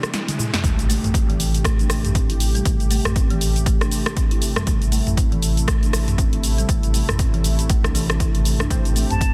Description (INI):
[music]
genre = afro house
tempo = 119 BPM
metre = 4/4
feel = swing 58% on 16ths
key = A minor pentatonic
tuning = A4 = 440 Hz
[part]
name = warm analog pad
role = sustained chords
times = 0.0-9.3 s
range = C3 to G4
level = -32 LUFS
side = equal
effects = chorus, sidechain pumping
[part]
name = house drum kit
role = drums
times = 0.0-9.3 s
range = cabasa, hi-hat, rim click, snare drum, toms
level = -27 LUFS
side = equal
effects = soft clipping on snare, studio reverb
[part]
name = riser and impact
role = sound effects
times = 0.0-2.7 s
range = none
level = -34 LUFS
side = equal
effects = none
[part]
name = folk marimba with soft mallets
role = arpeggios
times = 0.1-9.3 s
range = E3 to E4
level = -30 LUFS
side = equal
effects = sidechain pumping, digital delay
[part]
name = round analog bass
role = bass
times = 0.6-9.3 s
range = A1 to C2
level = -26 LUFS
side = equal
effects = tube saturation, sidechain pumping
[part]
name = electronic kick drum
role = drums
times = 0.6-9.3 s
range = none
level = -23 LUFS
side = equal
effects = studio reverb
[part]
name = deep mellow chord stab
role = stabs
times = 8.7-9.3 s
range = C4 to C5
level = -35 LUFS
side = equal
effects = chorus, sidechain pumping, digital delay
[part]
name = mellow hollow silver concert flute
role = melody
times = 9.1-9.3 s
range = A5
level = -27 LUFS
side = equal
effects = none
[sound]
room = little or no reverb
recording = dense, heavily limited modern master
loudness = -20 LUFS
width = mono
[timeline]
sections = 0.6-9.3 A section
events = break 0.0-0.6; riser 0.0-0.6; drum fill 0.1-0.6; drop 0.6-9.3; impact 0.6-2.7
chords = 0.0 Am7 (rootless); 0.6 Am7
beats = 0.13 | 0.64 1.14 1.65 2.15 | 2.65 3.16 3.66 4.17 | 4.67 5.17 5.68 6.18 | 6.69 7.19 7.70 8.20 | 8.71 9.21